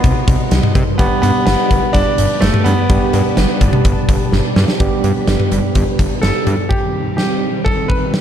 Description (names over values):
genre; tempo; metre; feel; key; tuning
synth-pop; 126 BPM; 4/4; straight; G major; A4 = 439 Hz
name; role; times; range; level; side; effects
clear concert grand piano; melody; 0.0-8.2 s; A3 to B4; -19 LUFS; equal; ping-pong delay
bell-like tine electric piano; accompaniment; 0.0-6.7 s; C3 to G4; -21 LUFS; right 6 dB; medium stereo tremolo
string machine, violas; sustained chords; 0.0-8.2 s; Eb3 to C6; -24 LUFS; right 1 dB; ensemble chorus
fat analog bass; bass; 0.0-6.6 s; G1 to C3; -16 LUFS; equal; none
huge arena drum kit; drums; 0.0-8.2 s; cowbell, hi-hat, kick drum, snare drum, toms; -15 LUFS; equal; none
room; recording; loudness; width
light reverb, studio reverb; dark, warm production; -12 LUFS; side -9 dB against mid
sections
0.0-4.8 A section; 4.8-6.7 B section; 6.7-8.2 C section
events
drum fill 4.3-4.8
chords
0.0 Cm; 1.0 G; 6.7 Cm